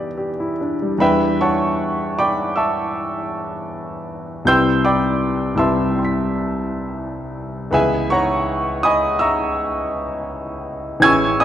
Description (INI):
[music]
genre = classical, impressionist solo piano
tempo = 45-57 BPM (dotted quarters)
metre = 9/8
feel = rubato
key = E dorian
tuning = A4 = 440 Hz
[part]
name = clear grand piano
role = solo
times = 0.0-11.4 s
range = A1 to B6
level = -17 LUFS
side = equal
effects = none
[sound]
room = moderate scoring stage reverb, RT60 1.6 s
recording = none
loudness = -17 LUFS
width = side -10 dB against mid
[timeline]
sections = 0.0-1.0 A section; 1.0-11.4 B section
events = none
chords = 0.0 Em7; 4.5 Cmaj7; 7.7 C#m7